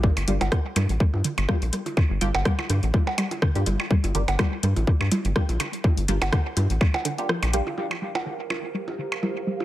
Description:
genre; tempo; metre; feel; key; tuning
minimal techno; 124 BPM; 4/4; swing 55% on 16ths; G minor; A4 = 440 Hz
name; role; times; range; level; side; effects
hollow square pluck; riff; 0.0-9.5 s; D3 to G3; -30 LUFS; equal; chorus, sidechain pumping, tape echo
rubbery square bass; bass; 0.0-9.4 s; G1 to G2; -24 LUFS; equal; sidechain pumping, high-pass filter
electronic kick drum; drums; 0.0-6.9 s; none; -22 LUFS; equal; none
percussion blips; percussion; 0.0-9.6 s; none; -30 LUFS; right 2 dB; overdrive, dub echo
booming analog drum machine; drums; 0.2-7.6 s; hi-hat, rim click; -31 LUFS; equal; dub echo
filtered dub chord stab; stabs; 0.3-7.6 s; Bb3 to G4; -34 LUFS; equal; phaser, wide subtle chorus, dub echo
ethereal airy pad; texture; 8.7-9.6 s; G4 to F5; -34 LUFS; right 3 dB; ensemble chorus, built-in reverb, sidechain pumping
pulsing gated texture; texture; 8.0-9.6 s; Bb4; -38 LUFS; right 6 dB; chorus, built-in reverb, sidechain pumping
room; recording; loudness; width
light reverb; echo-heavy mix; -22 LUFS; side -14 dB against mid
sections
0.0-7.8 A section; 7.8-9.6 B section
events
filter sweep on synth arpeggio sound 0.0-7.8, 7.8-9.6; kick drops out 7.3-7.8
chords
0.0 Gm; 7.8 Gm7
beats
| 0.04 0.52 1.00 1.49 | 1.97 2.46 2.94 3.42 | 3.91 4.39 4.87 5.36 | 5.84 6.33 6.81 7.29 | 7.78 8.26 8.74 9.23

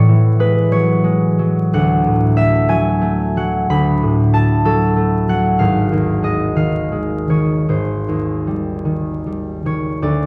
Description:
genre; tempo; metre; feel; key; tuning
classical, solo harp piece; 49-66 BPM (dotted quarters); 6/8; rubato; unclear; A4 = 441 Hz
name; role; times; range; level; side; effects
concert harp; solo; 0.0-10.3 s; G#1 to B5; -16 LUFS; equal; none
room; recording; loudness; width
wet recital hall reverb, RT60 1.6 s; dark, warm production, vinyl crackle; -16 LUFS; mono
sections
0.0-10.0 A section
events
none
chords
0.0 Eadd9/A; 1.7 Dmaj7; 5.6 G#m6; 7.7 G#maj7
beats
0.72 | 1.74 2.69 | 3.71 4.65 | 5.61 6.58 | 7.69 8.87 | 10.03

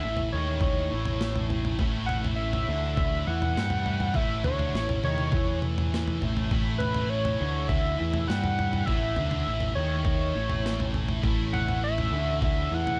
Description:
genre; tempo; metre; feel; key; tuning
indie rock; 102 BPM; 4/4; straight; A major; A4 = 440 Hz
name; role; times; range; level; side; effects
lead with added fifth; melody; 0.0-13.0 s; B4 to F#5; -34 LUFS; equal; chorus
heavy high-gain guitar; riff; 0.0-13.0 s; A2 to E4; -37 LUFS; equal; distortion, ensemble chorus, analog delay
raw garage guitar; riff; 0.0-13.0 s; A2 to G4; -37 LUFS; equal; overdrive
overdriven picked electric bass; bass; 0.0-13.0 s; A1 to G2; -32 LUFS; equal; none
breakbeat sampler-style drum kit; drums; 0.2-13.0 s; kick drum, snare drum, toms; -32 LUFS; equal; none
room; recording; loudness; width
light reverb; dark, warm production; -27 LUFS; mono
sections
0.0-13.0 A section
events
none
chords
0.0 A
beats
0.02 0.61 1.20 | 1.79 2.38 2.97 3.56 | 4.15 4.74 5.33 5.92 | 6.51 7.10 7.69 8.28 | 8.87 9.46 10.05 10.65 | 11.24 11.83 12.42

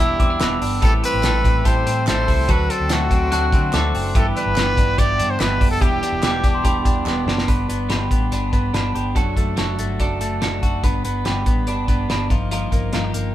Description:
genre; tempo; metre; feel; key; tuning
jangly indie pop; 144 BPM; 4/4; straight; G major; A4 = 441 Hz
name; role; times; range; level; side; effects
clear trumpet; melody; 0.0-7.3 s; E4 to D5; -22 LUFS; equal; none
glockenspiel with soft plastic mallets; second line; 0.0-0.7, 3.3-7.4 s; B5 to F#6; -29 LUFS; equal; none
clean electric guitar; accompaniment; 0.0-13.3 s; G2 to B4; -26 LUFS; right 6 dB; none
twelve-string electric guitar; arpeggios; 0.0-13.3 s; E3 to G4; -26 LUFS; left 3 dB; none
picked electric bass; bass; 0.0-13.3 s; E1 to D3; -24 LUFS; equal; none
cloth-damped thuddy drum kit; drums; 0.2-13.2 s; hi-hat, kick drum, snare drum; -20 LUFS; equal; none
group handclap; percussion; 0.4-7.2 s; none; -34 LUFS; right 2 dB; none
room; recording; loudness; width
moderate small room reverb, RT60 0.5 s; band playing live in one room; -17 LUFS; side -13 dB against mid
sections
0.0-7.5 A section; 7.5-13.3 B section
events
drum fill 7.1-7.5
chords
0.0 Em7; 0.8 Am7; 2.5 D7; 4.1 G6; 5.8 Em7; 7.5 G; 9.2 D/F#; 10.8 G; 12.3 Ebadd9/G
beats
0.00 0.41 | 0.82 1.24 1.66 2.07 | 2.49 2.90 3.32 3.73 | 4.15 4.57 4.98 5.40 | 5.81 6.23 6.65 7.07 | 7.49 7.90 8.32 8.74 | 9.16 9.58 10.00 10.42 | 10.84 11.26 11.68 12.10 | 12.52 12.94

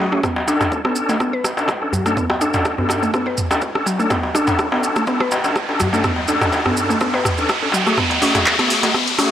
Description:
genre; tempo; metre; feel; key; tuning
afro house; 124 BPM; 4/4; swing 54% on 16ths; B dorian; A4 = 445 Hz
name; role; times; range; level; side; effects
mallet-like synth pluck; arpeggios; 0.0-9.3 s; F#3 to B4; -22 LUFS; equal; chorus, sidechain pumping, tape echo
bright tonewheel organ; stabs; 0.0-9.3 s; A3 to A4; -22 LUFS; left 1 dB; chorus vibrato, fast rotary speaker, sidechain pumping, tape echo
darbuka; percussion; 0.0-9.3 s; none; -23 LUFS; left 1 dB; none
deep house drum kit; drums; 0.1-9.3 s; handclaps, hi-hat, rim click, toms; -23 LUFS; right 1 dB; none
electronic kick drum; drums; 0.2-9.0 s; none; -30 LUFS; equal; high-pass filter on kick
maracas; percussion; 0.2-9.3 s; none; -29 LUFS; right 3 dB; none
riser; sound effects; 1.8-9.3 s; none; -23 LUFS; equal; none
room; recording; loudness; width
light reverb, digital ambience; dry, gritty hardware recording; -16 LUFS; side -10 dB against mid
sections
0.2-9.3 A section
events
build-up 0.2-9.3; riser 1.8-9.3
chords
0.2 Bm7; 8.0 F#madd9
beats
| 0.23 0.72 1.20 1.69 | 2.17 2.65 3.14 3.62 | 4.11 4.59 5.07 5.56 | 6.04 6.53 7.01 7.49 | 7.98 8.46 8.95

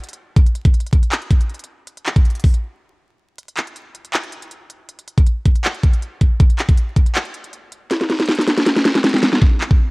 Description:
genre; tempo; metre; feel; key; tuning
hip hop; 159 BPM; 4/4; half-time; none; none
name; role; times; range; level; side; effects
trap drum kit; drums; 0.0-9.8 s; handclaps, hi-hat, kick drum, snare drum; -14 LUFS; equal; none
room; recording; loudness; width
little or no reverb; worn, warbling old tape, cassette tape, vinyl crackle, warbly pitch drift; -14 LUFS; side -29 dB against mid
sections
0.0-3.4 A section; 3.4-9.4 B section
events
break 2.6-3.4; drum fill 7.9-9.4; hi-hats muted 9.4-9.9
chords
none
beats
| 0.36 0.74 1.12 1.49 | 1.87 2.25 2.63 3.00 | 3.38 3.76 4.14 4.51 | 4.89 5.27 5.64 6.02 | 6.40 6.78 7.16 7.53 | 7.91 8.29 8.66 9.04 | 9.42

